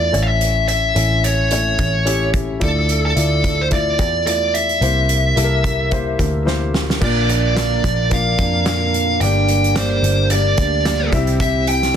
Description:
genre	piano-driven pop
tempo	109 BPM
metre	4/4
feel	swing 56% on 16ths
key	unclear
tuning	A4 = 439 Hz
part	smooth overdriven lead guitar	melody	0.0-12.0 s	A4 to G5	-19 LUFS	equal	none
part	warm upright piano	accompaniment	0.0-12.0 s	G2 to F5	-23 LUFS	left 3 dB	none
part	vintage muted picked electric bass	bass	0.0-12.0 s	G1 to F2	-19 LUFS	equal	none
part	loose indie drum kit	drums	0.1-12.0 s	crash cymbal, handclaps, hi-hat, kick drum, snare drum	-22 LUFS	right 1 dB	none
part	picked plugged-in steel-string acoustic guitar	riff	7.0-11.9 s	G2 to Bb4	-24 LUFS	right 7 dB	none
room	light reverb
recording	dense, heavily limited modern master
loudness	-14 LUFS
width	side -8 dB against mid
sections	0.0-7.0 A section; 7.0-12.0 B section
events	drum fill 6.5-7.0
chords	0.1 A; 2.6 Dmadd9; 4.8 C7; 7.0 Bb; 9.2 Gm; 11.1 C

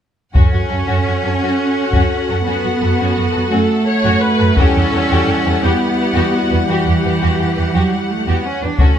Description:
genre	cinematic, epic orchestral film score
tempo	57 BPM (dotted quarters)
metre	6/8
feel	straight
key	E dorian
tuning	A4 = 439 Hz
part	dark symphonic violin section	second line	0.3-9.0 s	C#4 to B4	-24 LUFS	left 4 dB	none
part	mellow French horn section	sustained chords	0.3-9.0 s	G3 to A4	-23 LUFS	left 3 dB	none
part	rich symphonic cello section	bass	0.3-9.0 s	E3 to D4	-18 LUFS	right 2 dB	none
part	rich symphonic double bass section	bass	0.3-8.9 s	D2 to F#2	-19 LUFS	right 3 dB	none
part	solo taiko drums	drums	0.3-9.0 s	none	-14 LUFS	left 1 dB	none
part	rich studio violin section	melody	0.4-9.0 s	F#5	-25 LUFS	left 4 dB	none
part	rich studio viola section	accompaniment	1.4-8.2 s	F#4 to C#5	-22 LUFS	equal	none
room	light reverb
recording	none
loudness	-13 LUFS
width	side -9 dB against mid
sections	0.3-9.0 A section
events	none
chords	0.3 F#m; 4.6 Emadd9

